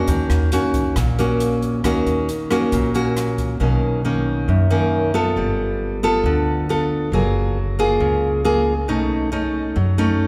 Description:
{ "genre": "bossa nova", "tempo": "136 BPM", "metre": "4/4", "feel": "straight", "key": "unclear", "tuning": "A4 = 445 Hz", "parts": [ { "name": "nylon-string guitar", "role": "accompaniment", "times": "0.0-10.3 s", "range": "F#2 to A4", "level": "-21 LUFS", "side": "equal", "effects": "none" }, { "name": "upright bass", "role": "bass", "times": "0.0-10.3 s", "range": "Gb1 to F#2", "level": "-24 LUFS", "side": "equal", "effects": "none" }, { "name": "open jazz drum kit", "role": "drums", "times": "0.1-3.5 s", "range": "hi-hat, kick drum, rim click", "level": "-30 LUFS", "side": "equal", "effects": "none" } ], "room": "moderate church reverb, RT60 3.0 s", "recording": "recorded in a church or concert hall", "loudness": "-19 LUFS", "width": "mono", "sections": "0.0-3.6 A section; 3.6-10.3 B section", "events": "none", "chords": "0.1 Ebm7; 3.6 Bmaj9; 5.4 G9; 7.1 Gbmaj9; 8.9 B9" }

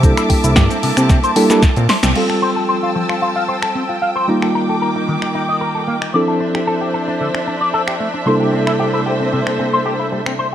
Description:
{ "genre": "nu-disco, nu disco", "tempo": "113 BPM", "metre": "4/4", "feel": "straight", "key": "F major", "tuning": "A4 = 441 Hz", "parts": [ { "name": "mellow reed electric piano", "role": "accompaniment", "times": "0.0-10.5 s", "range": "C3 to A4", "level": "-19 LUFS", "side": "right 1 dB", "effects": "fast tremolo, slapback echo" }, { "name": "rich studio string section", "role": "sustained chords", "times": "0.0-10.5 s", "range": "Eb3 to E6", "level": "-21 LUFS", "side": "right 1 dB", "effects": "sidechain pumping" }, { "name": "electric guitar with an envelope filter", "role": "riff", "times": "0.0-10.5 s", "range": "C3 to F5", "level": "-20 LUFS", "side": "left 2 dB", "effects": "analog chorus, low-pass filter, slapback echo" }, { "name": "fat analog bass", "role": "bass", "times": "0.0-2.1 s", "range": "C2 to C3", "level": "-15 LUFS", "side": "equal", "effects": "none" }, { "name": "electronic kick drum", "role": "drums", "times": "0.0-1.7 s", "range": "none", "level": "-13 LUFS", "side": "equal", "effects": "small room reverb" }, { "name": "house drum kit", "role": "drums", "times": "0.0-10.4 s", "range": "crash cymbal, finger snaps, hi-hat, shaker, snare drum", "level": "-20 LUFS", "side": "equal", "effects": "small room reverb" } ], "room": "light reverb, digital ambience", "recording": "none", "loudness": "-14 LUFS", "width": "side -10 dB against mid", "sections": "0.0-2.2 A section; 2.2-10.5 B section", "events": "filter sweep on reed electric piano 0.0-2.2; drum fill 1.1-2.2; band accent 2.0", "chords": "0.0 C13; 2.2 Fmaj9; 4.3 Ebmaj7; 6.1 Dm9; 8.3 C13" }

